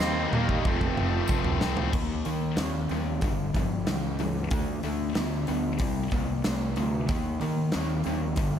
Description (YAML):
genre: classic rock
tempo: 93 BPM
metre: 4/4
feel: straight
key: unclear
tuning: A4 = 440 Hz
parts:
  - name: rich cello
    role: melody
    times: 0.0-1.6 s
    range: A3 to C4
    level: -34 LUFS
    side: right 2 dB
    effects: tape echo
  - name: tonewheel organ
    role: sustained chords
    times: 0.0-1.9 s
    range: A3 to Bb4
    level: -41 LUFS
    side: right 1 dB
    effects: slow rotary speaker
  - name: raw garage guitar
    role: riff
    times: 0.0-8.6 s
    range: F2 to Eb4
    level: -33 LUFS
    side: right 9 dB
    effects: overdrive, phaser
  - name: tight distorted guitar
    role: riff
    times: 0.0-8.6 s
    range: F2 to Eb4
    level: -32 LUFS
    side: left 10 dB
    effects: distortion
  - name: fuzz fingered electric bass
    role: bass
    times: 0.0-8.6 s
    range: F1 to Eb3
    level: -31 LUFS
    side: equal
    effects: overdrive
  - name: huge arena drum kit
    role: drums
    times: 0.0-8.5 s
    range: crash cymbal, hi-hat, kick drum, snare drum, toms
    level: -29 LUFS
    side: equal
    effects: none
  - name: tambourine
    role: percussion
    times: 1.3-1.4 s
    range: none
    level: -44 LUFS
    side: right 12 dB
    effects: none
room: light reverb, small room ambience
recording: none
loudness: -25 LUFS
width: side -9 dB against mid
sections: 0.0-1.9 A section; 1.9-8.6 B section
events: drum fill 0.0-1.9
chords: 0.0 Eb; 0.7 F; 1.9 Eb5; 3.2 G5; 4.5 D5; 5.8 C5; 7.1 Eb5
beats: 0.01 0.65 1.29 | 1.94 2.58 3.23 3.87 | 4.51 5.16 5.80 6.45 | 7.09 7.74 8.38